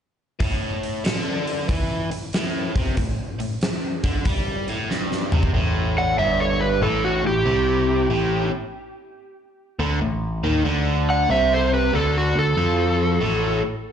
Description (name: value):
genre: blues rock power trio and southern rock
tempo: 94 BPM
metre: 4/4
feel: swing 66% on 8ths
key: unclear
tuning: A4 = 437 Hz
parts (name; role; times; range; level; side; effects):
- biting overdriven guitar; riff; 0.4-13.6 s; G2 to G3; -25 LUFS; left 1 dB; slapback echo
- huge arena drum kit; drums; 0.4-5.5 s; hi-hat, kick drum, snare drum, toms; -24 LUFS; equal; none
- growling picked electric bass; bass; 5.5-13.6 s; G1 to F2; -23 LUFS; equal; overdrive
- overdriven slide guitar; melody; 6.0-13.6 s; F#4 to F#5; -22 LUFS; right 1 dB; slapback echo
- dark smooth lead guitar; second line; 6.0-13.6 s; D4 to D5; -32 LUFS; right 4 dB; overdrive, slapback echo
room: light reverb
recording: live gig heard through the venue's PA, club reverb, nothing above 10.5 kHz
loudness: -19 LUFS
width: side -8 dB against mid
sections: 0.4-5.5 A section; 5.5-13.9 B section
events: drum fill 4.9-5.5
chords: 0.4 A5; 10.7 D7; 13.2 N.C.